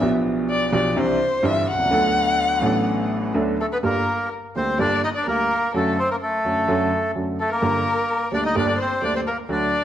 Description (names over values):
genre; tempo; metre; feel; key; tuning
tango; 127 BPM; 4/4; rubato; G harmonic minor from 3.8 s; A4 = 440 Hz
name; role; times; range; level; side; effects
warm violin; second line; 0.0-9.8 s; A4 to F#5; -24 LUFS; left 2 dB; none
warm grand piano; accompaniment; 0.0-9.7 s; G1 to A4; -22 LUFS; right 1 dB; none
bandoneon; melody; 3.6-9.8 s; A3 to Eb5; -22 LUFS; equal; none
room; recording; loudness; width
wet large studio reverb, RT60 1.2 s; none; -19 LUFS; side -10 dB against mid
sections
0.0-3.8 A section; 3.8-9.8 B section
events
violin solo 0.0-3.8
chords
0.0 G7/B; 1.0 Cadd9; 1.9 D6; 3.8 Gm; 5.7 D/F#; 7.6 Gm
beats
| 0.03 0.50 0.97 1.44 | 1.91 2.38 2.86 3.35 | 3.84 4.32 4.79 5.27 | 5.74 6.22 6.69 7.15 | 7.62 8.09 8.55 9.02 | 9.50